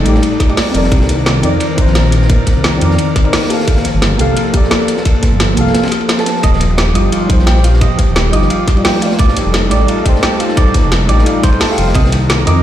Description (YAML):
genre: liquid drum and bass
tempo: 174 BPM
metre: 4/4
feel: swing 54% on 16ths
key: unclear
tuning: A4 = 440 Hz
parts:
  - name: deep mellow chord stab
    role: accompaniment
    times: 0.0-12.6 s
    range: G3 to D6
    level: -18 LUFS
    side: equal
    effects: chorus, cassette tape, tape echo
  - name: airy breathy pad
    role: sustained chords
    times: 0.0-12.6 s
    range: Eb3 to D5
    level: -18 LUFS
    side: left 1 dB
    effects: chorus, sidechain pumping
  - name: dark detuned saw bass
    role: bass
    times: 0.0-12.6 s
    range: Eb1 to F2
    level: -13 LUFS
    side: equal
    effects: none
  - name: crunchy breakbeat drum kit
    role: drums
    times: 0.1-12.6 s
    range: hi-hat, ride cymbal, snare drum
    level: -22 LUFS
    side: equal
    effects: high-pass filter on cymbals, high-pass filter on hats, high-pass filter on snare, high-pass filter on room
  - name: drum and bass drum kit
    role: drums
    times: 0.1-12.5 s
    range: hi-hat, snare drum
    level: -19 LUFS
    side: equal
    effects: none
  - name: electronic kick drum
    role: drums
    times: 0.4-12.0 s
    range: none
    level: -11 LUFS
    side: equal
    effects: none
  - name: clean electric guitar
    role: arpeggios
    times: 6.4-12.6 s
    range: F4 to Eb5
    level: -20 LUFS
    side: right 3 dB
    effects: tape echo
room: light reverb, small room reverb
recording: played on a big sound system in a bare room, large studio reverb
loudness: -10 LUFS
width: side -11 dB against mid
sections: 0.0-12.6 A section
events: none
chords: 0.0 F13; 0.9 Cm9; 3.7 Gm9; 6.4 Ebmaj9; 9.0 F13; 12.0 Cm9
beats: 0.23 0.57 | 0.92 1.26 1.61 1.95 | 2.30 2.64 2.99 3.33 | 3.68 4.02 4.37 4.71 | 5.06 5.40 5.75 6.09 | 6.43 6.78 7.12 7.47 | 7.82 8.16 8.50 8.85 | 9.19 9.54 9.88 10.23 | 10.57 10.92 11.26 11.61 | 11.95 12.30